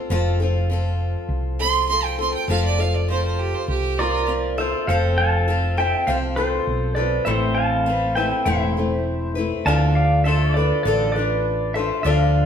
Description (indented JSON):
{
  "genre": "honky-tonk and classic country",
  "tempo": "100 BPM",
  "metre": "4/4",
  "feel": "straight",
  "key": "unclear",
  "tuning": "A4 = 440 Hz",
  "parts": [
    { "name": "picked steel-string acoustic guitar", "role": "accompaniment", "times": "0.0-12.5 s", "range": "A2 to B4", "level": "-25 LUFS", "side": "left 5 dB", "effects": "none" },
    { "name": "warm upright piano", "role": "accompaniment", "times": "0.0-12.5 s", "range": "C4 to B5", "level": "-33 LUFS", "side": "right 2 dB", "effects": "none" },
    { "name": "pedal steel guitar", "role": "sustained chords", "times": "0.0-12.5 s", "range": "C4 to D5", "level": "-31 LUFS", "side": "right 3 dB", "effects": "none" },
    { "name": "hollow-body short-scale fingered electric bass", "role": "bass", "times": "0.1-12.5 s", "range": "E1 to D2", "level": "-22 LUFS", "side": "equal", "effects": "none" },
    { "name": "rich fiddle", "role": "second line", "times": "1.6-4.3 s", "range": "F4 to C6", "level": "-23 LUFS", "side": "right 6 dB", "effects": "none" },
    { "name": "pedal steel guitar", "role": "melody", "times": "4.0-12.5 s", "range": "A4 to A5", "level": "-22 LUFS", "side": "equal", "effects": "none" }
  ],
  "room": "wet large studio reverb, RT60 1.3 s",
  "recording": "band playing live in one room",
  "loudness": "-18 LUFS",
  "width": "side -8 dB against mid",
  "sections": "0.0-4.9 A section; 4.9-12.5 B section",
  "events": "fiddle solo 0.0-4.9",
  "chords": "0.0 F; 7.3 Amadd9; 9.7 Dm",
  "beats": "| 0.11 0.70 1.30 1.90 | 2.50 3.09 3.69 4.29 | 4.88 5.48 6.08 6.68 | 7.27 7.87 8.47 9.06 | 9.66 10.26 10.85 11.45 | 12.05"
}